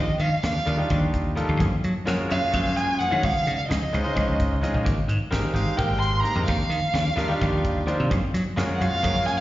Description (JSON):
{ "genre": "electric jazz fusion", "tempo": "258 BPM (eighths)", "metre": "7/8", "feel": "straight", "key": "unclear", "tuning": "A4 = 438 Hz", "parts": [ { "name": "dark violin", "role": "melody", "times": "0.0-9.4 s", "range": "Eb5 to C6", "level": "-27 LUFS", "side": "right 1 dB", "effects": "slapback echo" }, { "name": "mellow concert flute", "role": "second line", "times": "0.0-9.4 s", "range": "Eb5 to C6", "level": "-32 LUFS", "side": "right 1 dB", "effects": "none" }, { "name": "clean electric guitar", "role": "stabs", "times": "0.0-9.4 s", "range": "Eb3 to Ab4", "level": "-32 LUFS", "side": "right 2 dB", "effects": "analog chorus, slapback echo" }, { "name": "slap bass", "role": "bass", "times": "0.0-9.4 s", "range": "Ab1 to Gb3", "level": "-25 LUFS", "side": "equal", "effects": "none" }, { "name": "crisp fusion drum kit", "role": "drums", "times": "0.2-9.4 s", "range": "hi-hat, kick drum, snare drum", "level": "-30 LUFS", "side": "equal", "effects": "none" }, { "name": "bright grand piano", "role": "accompaniment", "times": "0.7-9.4 s", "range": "G3 to Eb5", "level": "-28 LUFS", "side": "equal", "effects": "slapback echo" } ], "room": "light reverb", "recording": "live gig heard through the venue's PA, recital hall reverb, nothing above 7.5 kHz", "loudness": "-21 LUFS", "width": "side -15 dB against mid", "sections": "0.0-9.4 A section", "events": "none", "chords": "0.0 Ebmaj9; 1.6 Gbmaj9; 3.2 Dbmaj9; 4.9 Abmaj9; 6.5 Ebmaj9; 8.1 Gbmaj9" }